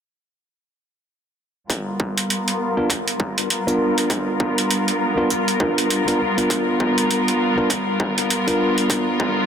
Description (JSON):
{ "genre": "glitch hop", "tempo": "100 BPM", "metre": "4/4", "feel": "swing 58% on 16ths", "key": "unclear", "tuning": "A4 = 440 Hz", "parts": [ { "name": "rich studio string section", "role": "sustained chords", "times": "1.7-9.5 s", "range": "G3 to A#4", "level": "-22 LUFS", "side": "left 1 dB", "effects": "sidechain pumping, low-pass filter" }, { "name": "electronic hi-hat", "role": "drums", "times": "1.7-9.0 s", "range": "none", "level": "-23 LUFS", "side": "right 1 dB", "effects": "overdrive" }, { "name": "electronic kick drum", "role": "drums", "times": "1.7-9.3 s", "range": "none", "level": "-26 LUFS", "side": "equal", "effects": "distortion, high-pass filter on kick" }, { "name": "tine electric piano", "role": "stabs", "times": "2.8-9.5 s", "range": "B3 to A#4", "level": "-21 LUFS", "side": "equal", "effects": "sidechain pumping, low-pass filter, ping-pong delay" } ], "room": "moderate lush hall reverb, RT60 1.9 s", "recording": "dense, heavily limited modern master", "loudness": "-18 LUFS", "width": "side -8 dB against mid", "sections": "1.7-9.5 A section", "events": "filter sweep on string section 1.7-9.5", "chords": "1.7 G7#9" }